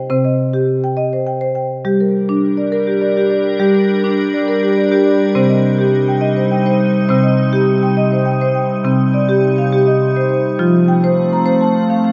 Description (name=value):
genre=world meditative, meditative tuned percussion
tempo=103 BPM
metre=3/4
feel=straight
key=unclear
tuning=A4 = 440 Hz
part: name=marimba with hard mallets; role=arpeggios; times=0.0-12.1 s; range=C3 to Bb5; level=-16 LUFS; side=equal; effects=none
part: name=icy glass pad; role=sustained chords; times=2.4-12.1 s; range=C3 to Bb4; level=-20 LUFS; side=equal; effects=chorus, built-in reverb
room=wet church reverb, RT60 2.8 s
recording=dark, warm production, nothing above 7.6 kHz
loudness=-15 LUFS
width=mono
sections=0.0-8.8 A section; 8.8-12.1 B section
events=none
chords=0.0 Cm; 1.9 Gm; 5.3 Cm; 10.6 F